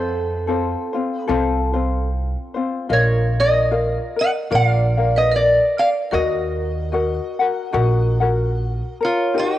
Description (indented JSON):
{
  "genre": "Hawaiian",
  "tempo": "74 BPM",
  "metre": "4/4",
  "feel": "swing 57% on 8ths",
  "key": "unclear",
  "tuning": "A4 = 438 Hz",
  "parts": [
    { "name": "lap resonator guitar", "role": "melody", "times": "0.0-9.6 s", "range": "F4 to Gb5", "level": "-19 LUFS", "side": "equal", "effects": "cassette tape" },
    { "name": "vibraphone with hard mallets", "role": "second line", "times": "0.0-9.6 s", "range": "A4 to Eb5", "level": "-27 LUFS", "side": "right 7 dB", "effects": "cassette tape" },
    { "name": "ukulele", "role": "accompaniment", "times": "0.0-9.6 s", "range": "C4 to Gb5", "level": "-22 LUFS", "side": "left 4 dB", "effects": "cassette tape" },
    { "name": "upright bass", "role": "bass", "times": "0.0-8.8 s", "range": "Bb1 to F2", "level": "-21 LUFS", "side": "right 1 dB", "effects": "none" }
  ],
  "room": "light reverb",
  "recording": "home recording on cassette",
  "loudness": "-17 LUFS",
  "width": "side -13 dB against mid",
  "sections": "0.0-9.3 A section",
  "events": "none",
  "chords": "0.0 F; 2.9 Bbsus4; 4.5 Bb; 6.1 Ebm"
}